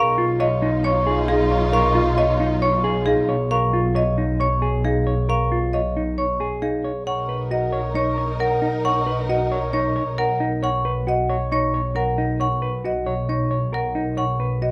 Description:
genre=classical, minimalist pattern music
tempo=135 BPM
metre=4/4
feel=straight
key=B lydian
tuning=A4 = 440 Hz
part: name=marimba with hard mallets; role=melody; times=0.0-14.7 s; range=G#4 to F#5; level=-28 LUFS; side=equal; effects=none
part: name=dark studio string section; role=sustained chords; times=0.0-3.3, 7.1-10.4 s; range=D#4 to A#4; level=-30 LUFS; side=equal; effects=none
part: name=large celesta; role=arpeggios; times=0.0-14.5 s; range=E#5 to C#6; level=-28 LUFS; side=equal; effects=none
part: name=semi-hollow electric guitar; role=arpeggios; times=0.0-14.7 s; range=D#4 to C#5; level=-27 LUFS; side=equal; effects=none
part: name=rich studio double bass section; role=bass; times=0.0-14.7 s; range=B1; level=-26 LUFS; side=equal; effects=none
room=light reverb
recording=none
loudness=-21 LUFS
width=mono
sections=0.0-7.1 A section; 7.1-14.7 B section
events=none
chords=0.0 C#add9/B; 7.1 Bmaj7

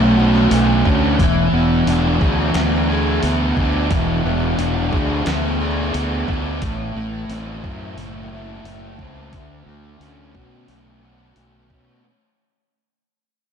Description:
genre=rock, shoegaze and dream pop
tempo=88 BPM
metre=4/4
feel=straight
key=unclear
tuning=A4 = 440 Hz
part: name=fuzz guitar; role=riff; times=0.0-12.0 s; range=A2 to G#4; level=-18 LUFS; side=equal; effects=distortion, wide subtle chorus
part: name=fuzz fingered electric bass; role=bass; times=0.0-12.0 s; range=E1 to B2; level=-21 LUFS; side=equal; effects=overdrive
part: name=clean 12-bit digital drum machine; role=drums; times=0.4-11.9 s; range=hi-hat, kick drum, snare drum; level=-23 LUFS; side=equal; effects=none
room=wet lush hall reverb, RT60 2.1 s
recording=dreamy mix soaked in reverb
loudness=-16 LUFS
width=side -7 dB against mid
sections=0.0-12.0 A section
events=fade-out 0.0-12.0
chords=0.0 Dmaj7; 1.2 E7; 6.6 Am; 9.3 Dmaj7

